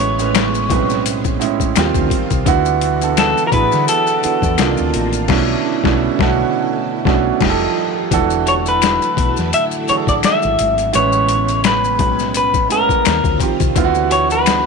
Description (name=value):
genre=R&B, neo-soul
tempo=85 BPM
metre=4/4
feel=swing 56% on 16ths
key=A major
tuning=A4 = 442 Hz
part: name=electric guitar through a small old amp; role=melody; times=0.0-14.7 s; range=A4 to E5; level=-17 LUFS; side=left 1 dB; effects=slapback echo
part: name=warm concert grand piano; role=accompaniment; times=0.0-14.7 s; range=A2 to B4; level=-18 LUFS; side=right 11 dB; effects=none
part: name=string machine, full ensemble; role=sustained chords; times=0.0-14.7 s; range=A2 to D5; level=-24 LUFS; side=equal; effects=phaser, ensemble chorus
part: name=woody fretless electric bass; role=bass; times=0.0-14.6 s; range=E1 to D3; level=-22 LUFS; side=left 1 dB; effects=none
part: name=boom bap sampler-style drum kit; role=drums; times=0.2-14.7 s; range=crash cymbal, hi-hat, kick drum, snare drum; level=-19 LUFS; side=left 6 dB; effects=overdrive
part: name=maracas and finger snaps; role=percussion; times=0.2-14.6 s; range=none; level=-26 LUFS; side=left 17 dB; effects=none
room=light reverb, digital ambience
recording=1960s-style stereo with parts hard left and right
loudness=-13 LUFS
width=side -4 dB against mid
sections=0.0-8.1 A section; 8.1-14.7 B section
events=band accent 5.3-8.1; silent gap 7.4-8.1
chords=0.0 Amaj9; 1.8 D#69; 2.5 D69; 4.6 Cm11; 5.3 Bm11; 7.4 F9; 8.1 E9sus4; 10.9 Amaj9; 13.1 D#69; 13.8 D69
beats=0.34 1.05 1.76 | 2.46 3.17 3.87 4.58 | 5.29 5.99 6.70 7.40 | 8.11 8.81 9.52 10.23 | 10.93 11.64 12.34 13.05 | 13.76 14.46